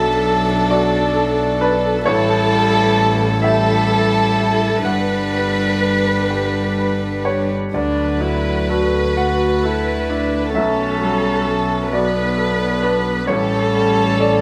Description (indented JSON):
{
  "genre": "neoclassical piano and strings",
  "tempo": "43 BPM (dotted quarters)",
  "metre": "6/8",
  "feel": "rubato",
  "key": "B minor",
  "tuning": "A4 = 439 Hz",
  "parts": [
    { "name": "warm chamber violin section", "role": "melody", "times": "0.0-14.4 s", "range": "A4 to B4", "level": "-22 LUFS", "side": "equal", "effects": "none" },
    { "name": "rich cello", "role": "second line", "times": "0.0-14.4 s", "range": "F#3 to A3", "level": "-26 LUFS", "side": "equal", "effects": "none" },
    { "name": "bright upright piano", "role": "accompaniment", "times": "0.0-14.4 s", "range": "A1 to F#5", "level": "-24 LUFS", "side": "equal", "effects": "none" },
    { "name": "dark viola", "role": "accompaniment", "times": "0.0-14.4 s", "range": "B3 to F#4", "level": "-26 LUFS", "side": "equal", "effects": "none" },
    { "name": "warm double bass", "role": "bass", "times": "0.0-14.4 s", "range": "G1 to D2", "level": "-25 LUFS", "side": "equal", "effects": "none" }
  ],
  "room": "moderate stone room reverb, RT60 1.0 s",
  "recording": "band playing live in one room",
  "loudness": "-17 LUFS",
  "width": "mono",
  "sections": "0.0-14.4 A section",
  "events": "none",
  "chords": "0.0 Bm7; 2.1 A7; 4.8 Gmaj7; 7.7 Dadd9; 10.6 Bm7; 13.3 A7"
}